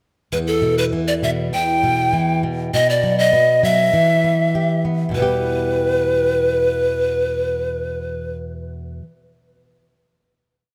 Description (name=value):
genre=andean folk, Andean ensemble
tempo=99 BPM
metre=2/4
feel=straight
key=E minor pentatonic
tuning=A4 = 440 Hz
part: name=breathy bright pan flute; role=melody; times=0.3-8.3 s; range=A4 to G5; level=-20 LUFS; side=equal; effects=none
part: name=flamenco guitar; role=accompaniment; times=0.3-9.1 s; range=E2 to G4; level=-24 LUFS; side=equal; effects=none
room=wet plate reverb, RT60 2.7 s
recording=dreamy mix soaked in reverb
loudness=-18 LUFS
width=mono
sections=0.3-5.1 A section; 5.1-7.6 final chord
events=none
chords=0.3 Em; 2.7 B5; 3.9 Em